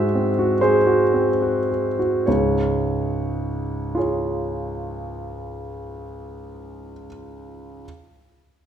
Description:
classical, impressionist solo piano; 34-45 BPM (dotted quarters); 6/8; rubato; Db major; A4 = 439 Hz
warm concert grand piano; solo; 0.0-7.9 s; Db2 to E5; -20 LUFS; right 1 dB
wet recital hall reverb, RT60 1.5 s; minimal, uncompressed stereo recording; -19 LUFS; side -9 dB against mid
0.0-2.3 A section; 2.3-5.6 B section
slowing down 0.0-2.3
0.0 Abaug7; 2.3 Db
0.61 | 2.26 3.92

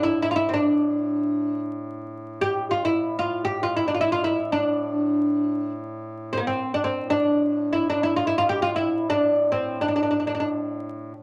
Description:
Arabic maqam ensemble; free time; A maqam bayati; A4 = 440 Hz
oud; melody; 0.0-10.5 s; Bb3+50c to G4; -24 LUFS; equal
warm duduk; drone; 0.0-11.2 s; A2; -37 LUFS; equal
moderate club reverb, RT60 0.7 s; vinyl crackle; -24 LUFS; mono
0.0-11.2 A section
free time

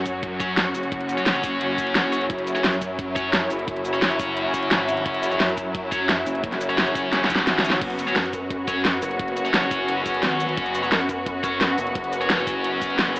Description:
dark technical drum and bass; 174 BPM; 4/4; straight; A4 = 440 Hz
rich studio string section; sustained chords; 0.0-13.2 s; F#3 to F#4; -26 LUFS; equal; sidechain pumping
phased detuned saw bass; bass; 0.0-13.2 s; F#1 to F#2; -30 LUFS; equal; phaser, overdrive
dubstep drum kit; drums; 0.1-13.2 s; crash cymbal, hi-hat, shaker, snare drum; -23 LUFS; equal; small room ambience
electronic kick drum; drums; 0.1-12.9 s; -33 LUFS; equal; small room ambience
heavy high-gain guitar; stabs; 0.4-13.1 s; C#4 to C#5; -27 LUFS; left 1 dB; distortion, dub echo
pulsing pluck wobble bass; bass; 8.2-11.8 s; G#1 to F#2; -28 LUFS; equal; chorus
light reverb, digital ambience; AM radio sound; -20 LUFS; side -22 dB against mid
0.0-13.2 A section
drum fill 7.1-7.8
0.0 F#5
0.23 0.57 | 0.92 1.26 1.61 1.95 | 2.30 2.64 2.99 3.33 | 3.68 4.02 4.37 4.71 | 5.06 5.40 5.75 6.09 | 6.44 6.78 7.13 7.47 | 7.82 8.16 8.51 8.85 | 9.20 9.54 9.88 10.23 | 10.57 10.92 11.26 11.61 | 11.95 12.30 12.64 12.99

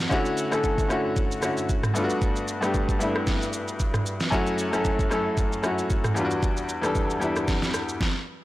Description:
amapiano; 114 BPM; 4/4; swing 55% on 16ths; A4 = 436 Hz
bright grand piano; accompaniment; 0.0-8.0 s; E2 to A4; -25 LUFS; left 1 dB
smooth R&B drum kit; drums; 0.1-8.1 s; kick drum, rim click, shaker, snare drum, toms; -26 LUFS; equal; soft clipping on snare
light reverb; blown-out, overdriven recording, overdrive; -23 LUFS; side -16 dB against mid
0.0-8.4 A section
0.1 Dmaj9; 2.0 Gmaj9; 4.3 F#m7; 6.2 Em7
| 0.11 0.64 1.17 1.69 | 2.22 2.74 3.27 3.80 | 4.32 4.85 5.38 5.90 | 6.43 6.95 7.48 8.01

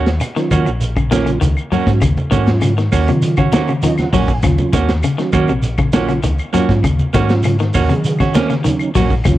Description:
afrobeat; 100 BPM; 4/4; straight; Eb dorian; A4 = 439 Hz
clean electric guitar; arpeggios; 0.0-9.4 s; C3 to Gb3; -20 LUFS; left 4 dB
semi-hollow electric guitar; stabs; 0.0-9.1 s; Bb3 to Gb4; -21 LUFS; right 6 dB
hollow-body short-scale fingered electric bass; bass; 0.0-9.4 s; Bb1 to Eb3; -18 LUFS; equal
crunchy breakbeat drum kit; drums; 0.1-9.4 s; hi-hat, kick drum, snare drum; -20 LUFS; equal
shekere; percussion; 0.1-9.4 s; -26 LUFS; right 3 dB
claves; percussion; 0.2-9.4 s; -31 LUFS; left 4 dB
congas; percussion; 0.2-9.4 s; -22 LUFS; equal
mellow tonewheel organ; accompaniment; 0.4-9.4 s; Db3 to Ab5; -21 LUFS; right 3 dB; slow rotary speaker, chorus vibrato
light reverb, small room ambience; cassette tape; -13 LUFS; side -14 dB against mid
0.0-9.4 A section
tonewheel organ fill 3.5-4.4
0.0 Ebm7
0.21 0.81 1.42 | 2.02 2.62 3.23 3.83 | 4.43 5.03 5.64 6.24 | 6.84 7.45 8.05 8.65 | 9.26

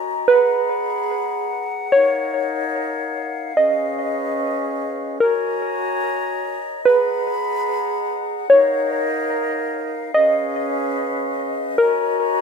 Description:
hip hop; free time; G# dorian; A4 = 440 Hz
breathy mellow small flute group; sustained chords; 0.0-12.4 s; C#4 to B5; -22 LUFS; left 1 dB
warbly dusty pluck; melody; 0.3-12.2 s; A#4 to D#5; -17 LUFS; equal; chorus, low-pass filter, ping-pong delay
light reverb, small room reverb; rough home demo mix; -18 LUFS; side -6 dB against mid
0.0-5.2 A section; 5.2-12.4 B section
0.3 G#m9; 1.9 D#m9; 3.6 C#9; 5.2 F#69; 6.9 G#m9; 8.5 D#m9; 10.1 C#9; 11.8 F#69
free time

